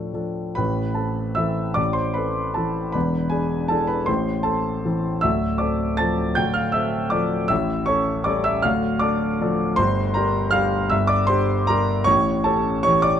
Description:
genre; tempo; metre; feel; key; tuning
classical, piano waltz; 157 BPM; 3/4; uneven beats, rubato; A minor; A4 = 440 Hz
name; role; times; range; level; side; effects
warm grand piano; solo; 0.0-13.2 s; D1 to A6; -19 LUFS; equal; none
room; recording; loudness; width
light reverb; dark, warm production; -19 LUFS; side -9 dB against mid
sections
0.6-13.2 A section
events
none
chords
0.0 Dm; 0.6 Am; 3.0 E7; 4.1 Am; 5.2 Dm7; 7.5 A7; 8.6 Dm; 9.8 Gm; 12.1 A7

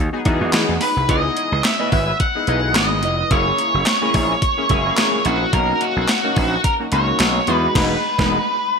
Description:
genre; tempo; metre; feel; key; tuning
early-eighties boogie funk; 108 BPM; 4/4; swing 56% on 16ths; C# dorian; A4 = 438 Hz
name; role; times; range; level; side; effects
mellow electric guitar; riff; 0.0-8.4 s; C#4 to E5; -28 LUFS; right 8 dB; analog chorus
gritty slap bass; bass; 0.0-8.4 s; E1 to E3; -22 LUFS; equal; overdrive
chorused polysynth; accompaniment; 0.1-8.4 s; G#3 to B4; -24 LUFS; left 3 dB; none
crisp 8-bit digital drum machine; drums; 0.3-8.3 s; crash cymbal, handclaps, hi-hat, kick drum, snare drum; -20 LUFS; equal; overdrive, gated reverb
octave-fuzz lead guitar; melody; 0.8-8.8 s; F#4 to F#5; -19 LUFS; equal; distortion
room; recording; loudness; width
moderate plate reverb, RT60 1.7 s; bright 1980s-style digital production; -15 LUFS; side -5 dB against mid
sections
0.0-8.8 A section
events
band accent 7.8-8.8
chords
0.0 Emaj7; 1.1 C#m9; 3.3 F#7; 5.5 Bmaj9; 7.5 Emaj7

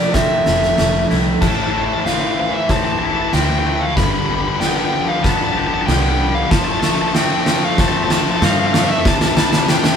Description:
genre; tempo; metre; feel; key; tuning
post-rock; 94 BPM; 4/4; straight; A minor; A4 = 440 Hz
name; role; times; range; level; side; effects
overdriven electric guitar; melody; 0.0-10.0 s; D5 to B5; -20 LUFS; equal; none
chorused pulse-width pad; sustained chords; 0.0-10.0 s; E3 to C5; -31 LUFS; left 1 dB; none
twangy electric guitar; arpeggios; 0.0-10.0 s; G2 to G4; -25 LUFS; left 2 dB; none
fuzz guitar; riff; 0.0-1.4 s; F2 to C4; -20 LUFS; right 3 dB; distortion
oversized low-tuned drum kit; drums; 0.1-10.0 s; crash cymbal, kick drum, snare drum; -18 LUFS; right 1 dB; none
fingered electric bass; bass; 0.5-10.0 s; F1 to A2; -23 LUFS; equal; none
distorted electric guitar; riff; 1.4-10.0 s; G2 to A3; -21 LUFS; left 6 dB; overdrive
room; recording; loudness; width
wet studio reverb, RT60 0.5 s; band playing live in one room; -14 LUFS; side -7 dB against mid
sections
0.0-1.4 A section; 1.4-10.0 B section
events
build-up 1.4-10.0; drum fill 1.4-10.0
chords
0.0 Fmaj7; 1.4 Am; 4.0 G7; 6.5 F; 9.1 Cadd9

